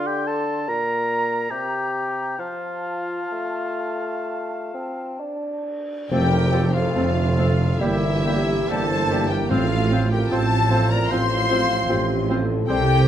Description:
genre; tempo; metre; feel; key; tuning
classical, slow romantic movement for symphony orchestra; 62-77 BPM; 4/4; rubato; F major; A4 = 440 Hz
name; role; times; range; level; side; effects
clear clarinet; second line; 0.0-12.8 s; Bb3 to Bb4; -31 LUFS; left 3 dB; none
hollow flute section; second line; 0.0-13.1 s; G4 to C6; -32 LUFS; right 1 dB; none
warm oboe; second line; 0.0-12.8 s; G4 to Bb5; -29 LUFS; equal; none
mellow bassoon; accompaniment; 0.0-12.9 s; Bb2 to D4; -30 LUFS; equal; none
cymbal swell and tam-tam; percussion; 2.4-9.5 s; none; -31 LUFS; left 3 dB; none
warm symphonic violin section; melody; 6.1-13.1 s; E5 to C6; -27 LUFS; left 4 dB; none
warm symphonic violin section; second line; 6.1-13.1 s; E5 to C6; -32 LUFS; left 4 dB; none
warm symphonic viola section; accompaniment; 6.1-12.8 s; A3 to G4; -31 LUFS; right 1 dB; none
mellow French horn section; sustained chords; 6.1-13.1 s; E4 to C5; -29 LUFS; left 4 dB; none
warm trombone section; sustained chords; 6.1-13.1 s; C3 to C4; -30 LUFS; right 5 dB; none
warm trumpet; stabs; 6.1-13.1 s; E4 to C5; -29 LUFS; equal; none
warm studio double bass section; bass; 6.1-13.1 s; F1 to C2; -25 LUFS; right 2 dB; none
warm symphonic cello section; bass; 6.1-13.1 s; F2 to C3; -26 LUFS; right 2 dB; none
warm tuba; bass; 6.1-13.1 s; F1 to C2; -27 LUFS; right 3 dB; none
timpani; percussion; 9.5-10.7 s; A2; -29 LUFS; equal; none
room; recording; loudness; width
moderate recital hall reverb, RT60 1.3 s; none; -20 LUFS; side -10 dB against mid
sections
0.0-6.1 A section; 6.1-13.1 B section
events
band accent 6.1-7.0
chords
0.0 D7(no3); 0.7 N.C.; 1.5 C5; 2.4 F; 7.8 Edim/G; 9.5 F/A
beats
0.68 1.50 | 2.39 3.32 4.27 5.20 | 6.11 6.96 7.80 8.69 | 9.51 10.32 11.11 11.90 | 12.70

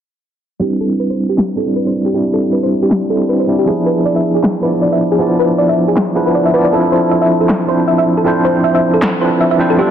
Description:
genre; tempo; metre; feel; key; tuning
future bass; 157 BPM; 4/4; swing 55% on 16ths, half-time; A minor; A4 = 438 Hz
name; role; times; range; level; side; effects
overdriven tine electric piano; accompaniment; 0.6-9.9 s; F3 to D5; -13 LUFS; right 1 dB; fast tremolo, low-pass filter, tape echo
thumb-piano-like synth pluck; arpeggios; 0.6-9.8 s; G4 to E5; -16 LUFS; equal; chorus, tape echo
electronic snare drum and handclaps; drums; 1.4-9.1 s; none; -18 LUFS; equal; overdrive
room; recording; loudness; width
moderate lush hall reverb, RT60 2.0 s; dense, heavily limited modern master, low-pass filter; -11 LUFS; side -9 dB against mid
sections
0.6-9.9 A section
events
filter sweep on tine electric piano 0.6-9.9; filter sweep on synth arpeggio sound 0.6-9.9; filter sweep 0.6-9.9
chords
0.6 Am11 (rootless); 3.7 E7b9; 6.7 Dm9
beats
| 0.62 1.00 1.38 1.76 | 2.14 2.53 2.91 3.29 | 3.67 4.05 4.44 4.82 | 5.20 5.58 5.97 6.35 | 6.73 7.11 7.50 7.88 | 8.26 8.64 9.02 9.40 | 9.79

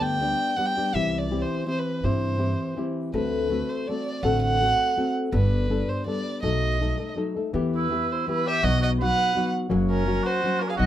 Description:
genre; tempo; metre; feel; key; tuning
mexican folk, mariachi; 165 BPM; 3/4; straight; G major, E harmonic minor from 7.5 s; A4 = 440 Hz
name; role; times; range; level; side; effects
dark violin; melody; 0.0-10.9 s; A#4 to G5; -27 LUFS; right 2 dB; none
nylon-string guitar; accompaniment; 0.0-10.9 s; F#2 to A4; -26 LUFS; left 2 dB; none
upright bass; bass; 0.0-10.9 s; F#1 to G2; -26 LUFS; right 1 dB; none
clear trumpet; second line; 7.8-10.9 s; C#4 to B4; -28 LUFS; right 4 dB; none
room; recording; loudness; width
moderate small room reverb, RT60 0.5 s; band playing live in one room; -22 LUFS; side -12 dB against mid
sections
0.0-7.5 A section; 7.5-10.9 B section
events
none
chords
0.0 G; 0.9 C; 3.1 D7; 5.3 Gadd9; 6.4 B7; 7.5 Em; 8.6 B; 9.7 F#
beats
0.22 0.58 | 0.94 1.30 1.67 | 2.04 2.40 2.77 | 3.14 3.51 3.88 | 4.24 4.61 4.97 | 5.34 5.70 6.06 | 6.43 6.79 7.16 | 7.53 7.90 8.27 | 8.63 8.99 9.35 | 9.71 10.07 10.43 | 10.79

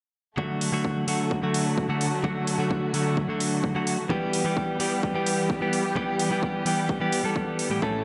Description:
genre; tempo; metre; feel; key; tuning
EDM, festival progressive house; 129 BPM; 4/4; straight; D major; A4 = 440 Hz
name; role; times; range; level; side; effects
direct-recorded clean electric guitar; accompaniment; 0.4-8.0 s; A2 to A4; -28 LUFS; equal; spring reverb, sidechain pumping, digital delay
muted studio string section; sustained chords; 0.4-8.0 s; D3 to A4; -33 LUFS; equal; sidechain pumping
electronic kick drum; drums; 0.4-7.9 s; none; -34 LUFS; equal; overdrive, high-pass filter on kick, high-pass filter on room
electronic hi-hat; drums; 0.6-7.7 s; none; -34 LUFS; equal; overdrive
room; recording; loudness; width
moderate scoring stage reverb, RT60 1.9 s; nothing above 11.0 kHz; -26 LUFS; mono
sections
0.4-8.0 A section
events
none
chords
0.4 D; 4.1 Em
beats
| 0.38 0.85 1.31 1.78 | 2.24 2.71 3.17 3.64 | 4.10 4.57 5.03 5.50 | 5.96 6.43 6.89 7.36 | 7.82

